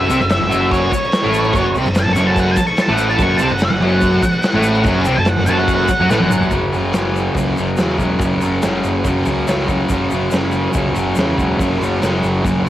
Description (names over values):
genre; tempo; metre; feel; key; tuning
garage rock duo or trio; 144 BPM; 4/4; straight; unclear; A4 = 439 Hz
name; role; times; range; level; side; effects
octave-fuzz lead guitar; melody; 0.0-6.5 s; C#5 to C#6; -19 LUFS; equal; distortion, cassette tape
fuzz guitar; riff; 0.0-12.7 s; F#2 to F#4; -16 LUFS; equal; distortion
growling picked electric bass; bass; 0.0-12.7 s; E1 to F#2; -22 LUFS; equal; overdrive
raw garage drum kit; drums; 0.1-12.7 s; crash cymbal, hi-hat, kick drum, snare drum, toms; -20 LUFS; equal; cassette tape
tube shaker; percussion; 0.1-12.6 s; none; -37 LUFS; left 6 dB; none
room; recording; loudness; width
light reverb, small room ambience; home recording on cassette; -14 LUFS; side -13 dB against mid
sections
0.0-6.5 A section; 6.5-12.7 B section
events
lead electric guitar solo 0.0-6.5; drum fill 6.1-6.5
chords
0.0 F#dim; 6.5 F#5